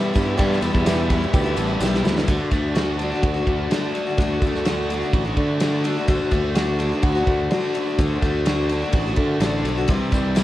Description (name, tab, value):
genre	folk rock and heartland rock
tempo	126 BPM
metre	4/4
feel	straight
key	unclear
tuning	A4 = 441 Hz
part	picked steel-string acoustic guitar	accompaniment	0.0-10.4 s	E2 to F#4	-25 LUFS	left 3 dB	none
part	warm grand piano	accompaniment	0.0-2.3 s	G4 to B5	-30 LUFS	right 2 dB	none
part	bright tonewheel organ	sustained chords	0.0-10.4 s	F#4 to C6	-34 LUFS	equal	none
part	biting overdriven guitar	riff	0.0-10.4 s	E2 to F#4	-26 LUFS	right 1 dB	none
part	tambourine	percussion	0.0-2.2, 9.9-10.4 s	none	-42 LUFS	right 4 dB	none
part	modern bright fingered electric bass	bass	0.2-10.4 s	A1 to D3	-24 LUFS	equal	none
part	loose indie drum kit	drums	0.2-10.4 s	kick drum, ride cymbal, snare drum	-23 LUFS	equal	none
room	light reverb, small room ambience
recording	worn, warbling old tape, cassette tape, warbly pitch drift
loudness	-18 LUFS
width	side -14 dB against mid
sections	0.0-2.3 A section; 2.3-10.4 B section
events	grand piano fill 0.9-2.3; drum fill 1.8-2.3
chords	0.0 Em; 2.3 D; 9.9 C